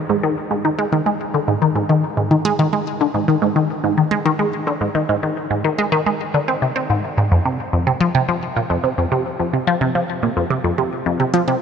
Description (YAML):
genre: ambient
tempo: 108 BPM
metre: 4/4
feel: straight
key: unclear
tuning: A4 = 441 Hz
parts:
  - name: resonant blip pluck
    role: solo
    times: 0.0-11.6 s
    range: F2 to C4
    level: -16 LUFS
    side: equal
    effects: phaser, ping-pong delay
room: wet huge ambient reverb, RT60 8.9 s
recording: none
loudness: -16 LUFS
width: side -7 dB against mid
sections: 0.0-11.6 A section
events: none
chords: none